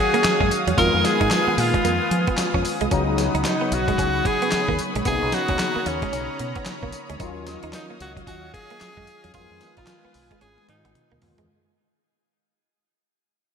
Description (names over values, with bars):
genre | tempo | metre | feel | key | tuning
R&B, new jack swing | 112 BPM | 4/4 | swing 61% on 16ths | unclear | A4 = 444 Hz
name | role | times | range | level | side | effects
clear tenor saxophone | melody | 0.0-11.2 s | C#4 to Bb4 | -24 LUFS | equal | shimmer reverb, ping-pong delay
barky tine electric piano | accompaniment | 0.0-11.5 s | Db3 to F5 | -28 LUFS | left 4 dB | ensemble chorus, shimmer reverb
lush unison pad | sustained chords | 0.0-11.5 s | Gb4 to Eb6 | -30 LUFS | equal | chorus, shimmer reverb
direct-recorded clean electric guitar | riff | 0.1-11.5 s | Gb3 to F4 | -29 LUFS | right 6 dB | wide subtle chorus, shimmer reverb
dusty soul sampler-style drum kit | drums | 0.1-11.5 s | handclaps, hi-hat, kick drum, snare drum, tambourine, toms | -26 LUFS | equal | gated reverb
deep dub fingered electric bass | bass | 0.2-11.5 s | Ab1 to F3 | -27 LUFS | equal | none
room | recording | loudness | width
wet lush hall reverb, RT60 1.8 s | bright 1980s-style digital production | -19 LUFS | side -7 dB against mid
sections
0.0-11.5 A section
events
fade-out 0.0-11.5; drum fill 10.4-11.5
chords
0.0 Ebm9; 0.8 Fm7b5; 2.9 Db9sus4; 5.1 Bmaj9; 7.2 Ebm9; 9.3 Fm7b5